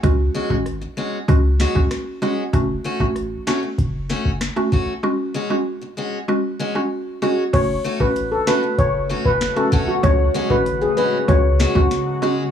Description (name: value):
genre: dancehall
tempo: 96 BPM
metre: 4/4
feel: straight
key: F# minor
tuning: A4 = 438 Hz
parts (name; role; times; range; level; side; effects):
- mallet-like synth pluck; accompaniment; 0.0-12.5 s; G#3 to F#4; -22 LUFS; right 2 dB; chorus
- warm 808-style bass; bass; 0.0-11.9 s; F#1 to C#2; -20 LUFS; equal; none
- booming analog drum machine; drums; 0.0-12.1 s; crash cymbal, finger snaps, hi-hat, kick drum, rim click, snare drum; -23 LUFS; equal; none
- picked steel-string acoustic guitar; arpeggios; 0.3-12.4 s; G#3 to F#4; -26 LUFS; left 3 dB; none
- steel pan; melody; 7.5-11.9 s; F#4 to C#5; -20 LUFS; left 2 dB; analog delay
- granular cloud pad; sustained chords; 8.4-12.5 s; C#3 to F#4; -27 LUFS; left 1 dB; built-in reverb, sidechain pumping
room: little or no reverb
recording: dry, gritty hardware recording, small room ambience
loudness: -17 LUFS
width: side -9 dB against mid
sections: 0.0-7.5 A section; 7.5-12.5 B section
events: none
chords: 0.0 C#sus4; 2.5 F#m; 5.0 C#sus4; 7.5 F#m; 10.0 C#sus4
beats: | 0.04 0.66 1.28 1.91 | 2.54 3.16 3.79 4.41 | 5.04 5.66 6.29 6.91 | 7.54 8.16 8.79 9.41 | 10.04 10.66 11.29 11.91